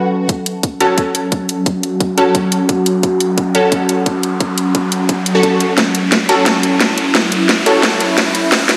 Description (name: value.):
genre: dark technical drum and bass.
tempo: 175 BPM.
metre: 4/4.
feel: straight.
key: F# minor.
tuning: A4 = 441 Hz.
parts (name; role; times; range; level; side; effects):
sweeping resonant pad; sustained chords; 0.0-8.8 s; F#3 to B4; -20 LUFS; equal; chorus, sidechain pumping.
swell and riser; sound effects; 0.0-8.8 s; none; -26 LUFS; equal; none.
warbly tape-like pad; texture; 0.0-8.8 s; C#4 to A5; -29 LUFS; equal; none.
drum and bass drum kit; drums; 0.3-8.8 s; hi-hat, snare drum; -17 LUFS; equal; overdrive, low-pass filter on hats, studio reverb, low-pass filter on snare.
electronic kick drum; drums; 0.3-8.6 s; none; -22 LUFS; equal; overdrive, high-pass filter on kick, studio reverb.
orchestra-hit-like synth stab; stabs; 0.8-7.7 s; C#4 to A4; -19 LUFS; equal; built-in reverb, analog delay.
room: wet lush hall reverb, RT60 1.8 s.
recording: dreamy mix soaked in reverb, high-pass filter.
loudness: -14 LUFS.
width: mono.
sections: 0.3-8.8 A section.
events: swell 0.0; build-up 0.3-8.8; riser 0.3-8.8; filter sweep on analog synth pad 0.3-8.8; drum fill 5.8-8.8.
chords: 0.3 F#m.